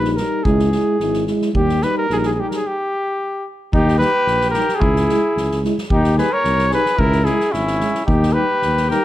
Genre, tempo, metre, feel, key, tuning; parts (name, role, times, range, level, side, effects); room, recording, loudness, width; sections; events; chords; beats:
balkan folk, Balkan brass band; 110 BPM; 2/4; straight; Eb phrygian dominant; A4 = 440 Hz
clear flugelhorn; melody; 0.0-9.0 s; Fb4 to Db5; -19 LUFS; equal
dark euphonium; accompaniment; 0.0-9.0 s; G3 to Ab3; -24 LUFS; right 6 dB
mellow euphonium; accompaniment; 0.0-9.0 s; Eb4 to Fb4; -26 LUFS; left 7 dB
mellow tuba; bass; 0.0-8.9 s; Ab1 to Eb2; -20 LUFS; equal
soft-mallet drum kit; percussion; 0.0-9.0 s; kick drum, snare drum; -25 LUFS; equal
warm trumpet; second line; 3.7-9.0 s; Db4 to Bb4; -23 LUFS; left 1 dB
moderate recital hall reverb, RT60 1.6 s; -15 LUFS; side -14 dB against mid
0.0-3.7 A section; 3.7-9.0 A section
stop 2.6-3.7
0.5 Dbm; 1.5 Eb; 2.6 N.C.; 3.7 Eb; 4.8 Dbm; 5.9 Eb; 7.0 Dbm; 8.1 Eb
| 0.45 1.00 | 1.54 2.09 | 2.64 3.18 | 3.73 4.27 | 4.82 5.36 | 5.90 6.45 | 6.99 7.54 | 8.09 8.63